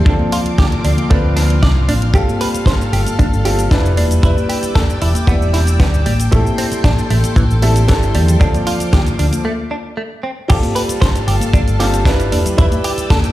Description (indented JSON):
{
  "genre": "nu-disco, nu disco",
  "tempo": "115 BPM",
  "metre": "4/4",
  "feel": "straight",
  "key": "D dorian",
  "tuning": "A4 = 441 Hz",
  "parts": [
    { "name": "warm grand piano", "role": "accompaniment", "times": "0.0-13.3 s", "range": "F3 to D5", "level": "-21 LUFS", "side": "right 1 dB", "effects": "sidechain pumping, ping-pong delay" },
    { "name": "string machine, full ensemble", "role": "sustained chords", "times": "0.0-13.3 s", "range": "C4 to E6", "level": "-27 LUFS", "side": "left 1 dB", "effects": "ensemble chorus, vintage 12-bit sampler grit, sidechain pumping" },
    { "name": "direct-recorded clean electric guitar", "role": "riff", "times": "0.1-13.2 s", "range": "E3 to D5", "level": "-23 LUFS", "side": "right 2 dB", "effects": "analog chorus, ping-pong delay" },
    { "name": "hollow-body short-scale fingered electric bass", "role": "bass", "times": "0.1-13.2 s", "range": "E1 to E2", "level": "-15 LUFS", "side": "equal", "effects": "sidechain pumping" },
    { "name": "house drum kit", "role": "drums", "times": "0.1-13.3 s", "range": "crash cymbal, hi-hat, shaker, snare drum", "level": "-25 LUFS", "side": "equal", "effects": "overdrive" },
    { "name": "kick drum", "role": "drums", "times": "0.1-13.2 s", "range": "none", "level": "-13 LUFS", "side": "equal", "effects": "none" },
    { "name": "congas", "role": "percussion", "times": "0.2-13.2 s", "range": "none", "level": "-24 LUFS", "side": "left 4 dB", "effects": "none" }
  ],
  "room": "light reverb",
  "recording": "played on a big sound system in a bare room, stone room reverb",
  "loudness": "-12 LUFS",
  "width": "side -15 dB against mid",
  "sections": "0.0-10.5 A section; 10.5-13.3 B section",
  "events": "break 9.5-10.5; drop 10.5-13.3",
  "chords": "0.1 Dm7; 2.1 G9sus4; 4.0 Em7; 6.1 Am7; 8.4 Dm7; 10.5 G9sus4; 12.3 Em7",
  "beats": "| 0.06 0.58 1.10 1.63 | 2.15 2.67 3.19 3.71 | 4.24 4.76 5.28 5.80 | 6.32 6.84 7.37 7.89 | 8.41 8.93 9.45 9.97 | 10.50 11.02 11.54 12.06 | 12.58 13.11"
}